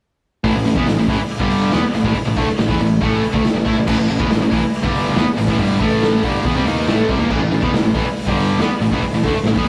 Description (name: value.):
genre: hard rock.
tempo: 140 BPM.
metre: 4/4.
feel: straight.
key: unclear.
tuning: A4 = 440 Hz.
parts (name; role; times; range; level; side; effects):
overdriven electric guitar; riff; 0.4-9.7 s; G2 to E4; -22 LUFS; equal; none.
tight distorted guitar; riff; 0.4-9.7 s; G2 to E4; -25 LUFS; equal; distortion.
tight distorted guitar; riff; 0.4-9.7 s; G2 to E4; -27 LUFS; equal; distortion.
fuzz picked electric bass; bass; 0.4-9.7 s; G1 to A2; -24 LUFS; equal; overdrive.
raw garage drum kit; drums; 0.4-9.7 s; crash cymbal, hi-hat, kick drum, snare drum; -23 LUFS; equal; none.
brassy analog pad; sustained chords; 0.5-9.7 s; A3 to B4; -32 LUFS; equal; none.
room: moderate stone room reverb, RT60 1.4 s.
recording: rough rehearsal-room recording, tube saturation.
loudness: -17 LUFS.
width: mono.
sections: 0.4-9.7 A section.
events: none.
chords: 0.4 A5.